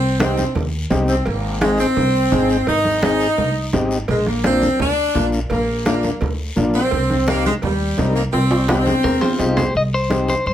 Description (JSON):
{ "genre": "latin, cumbia", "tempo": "170 BPM", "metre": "4/4", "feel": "straight", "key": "C minor", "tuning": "A4 = 440 Hz", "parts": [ { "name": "clear saxophone section", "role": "melody", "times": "0.0-9.5 s", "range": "G3 to Eb4", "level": "-19 LUFS", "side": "equal", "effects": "none" }, { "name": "upright bass", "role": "bass", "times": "0.0-10.5 s", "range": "Ab1 to G2", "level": "-22 LUFS", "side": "equal", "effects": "none" }, { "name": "overdriven combo organ", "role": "accompaniment", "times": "0.2-10.3 s", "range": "Bb3 to Bb4", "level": "-21 LUFS", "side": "left 2 dB", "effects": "none" }, { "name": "congas", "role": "percussion", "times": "0.2-10.5 s", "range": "none", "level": "-24 LUFS", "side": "right 2 dB", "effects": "none" }, { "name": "guiro", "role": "percussion", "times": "0.2-10.5 s", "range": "none", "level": "-35 LUFS", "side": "left 4 dB", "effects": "none" }, { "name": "cowbell and timbales", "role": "percussion", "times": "0.6-9.7 s", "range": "none", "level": "-26 LUFS", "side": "right 3 dB", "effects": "none" }, { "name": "clean electric guitar", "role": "second line", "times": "9.0-10.5 s", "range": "F4 to Eb5", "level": "-21 LUFS", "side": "left 2 dB", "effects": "none" } ], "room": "moderate small room reverb, RT60 0.5 s", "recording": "none", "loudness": "-16 LUFS", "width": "side -11 dB against mid", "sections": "0.0-9.7 A section", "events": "drum fill 8.3-9.7", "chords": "0.0 Cm; 1.3 Ab; 4.1 Bb; 6.9 Cm", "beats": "0.20 0.55 0.91 | 1.26 1.61 1.97 2.32 | 2.67 3.03 3.38 3.74 | 4.09 4.44 4.80 5.15 | 5.50 5.86 6.21 6.56 | 6.92 7.27 7.62 7.98 | 8.33 8.69 9.04 9.39 | 9.75 10.10 10.46" }